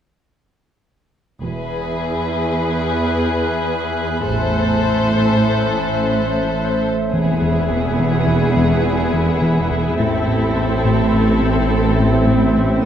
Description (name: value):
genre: cinematic, suspense film score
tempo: 105 BPM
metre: 5/4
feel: straight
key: unclear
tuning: A4 = 440 Hz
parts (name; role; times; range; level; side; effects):
- rich studio violin section; second line; 1.4-12.8 s; E4 to C5; -24 LUFS; left 3 dB; none
- glass harmonica; sustained chords; 1.4-12.8 s; G#4 to E5; -25 LUFS; right 2 dB; none
- rich symphonic cello section; bass; 1.4-12.8 s; E2 to A2; -21 LUFS; right 2 dB; none
- rich symphonic double bass section; bass; 1.4-12.8 s; E1 to A1; -22 LUFS; right 2 dB; none
- organ-like drone; drone; 1.9-12.8 s; A1 to E2; -25 LUFS; left 2 dB; ensemble chorus, built-in reverb
- rich studio violin section; texture; 1.4-6.8 s; G#5 to F#6; -28 LUFS; left 4 dB; none
- rich symphonic violin section; melody; 7.1-12.8 s; G#4 to A4; -25 LUFS; left 1 dB; none
- rich symphonic viola section; accompaniment; 7.1-12.8 s; B3 to C4; -22 LUFS; equal; none
- fat analog bass; riff; 7.1-12.7 s; E2 to A3; -21 LUFS; left 2 dB; none
room: moderate scoring stage reverb, RT60 1.6 s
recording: none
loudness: -15 LUFS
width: side -9 dB against mid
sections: 1.4-7.1 A section; 7.1-12.9 B section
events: none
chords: 1.4 E; 4.3 Am; 7.1 E; 10.0 Am